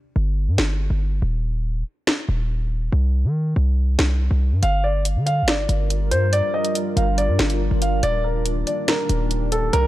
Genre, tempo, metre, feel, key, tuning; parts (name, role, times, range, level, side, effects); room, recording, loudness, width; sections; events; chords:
hip hop, drill; 141 BPM; 4/4; half-time; G minor; A4 = 439 Hz
hard-hitting 808-style bass; bass; 0.2-9.9 s; Eb1 to Eb3; -20 LUFS; equal
drill drum kit; drums; 0.6-9.8 s; hi-hat, snare drum; -23 LUFS; equal
dark concert grand piano; melody; 4.6-9.9 s; A4 to F5; -23 LUFS; equal; tape echo
deep dark ambient pad; sustained chords; 5.4-9.9 s; Eb3 to Bb4; -27 LUFS; equal; chorus, built-in reverb, tremolo
little or no reverb; dark, warm production; -18 LUFS; side -15 dB against mid
0.0-9.9 A section
break 0.0-4.6
0.0 G5; 1.2 N.C.; 2.9 C5; 4.6 Gm7; 8.0 Ebmaj7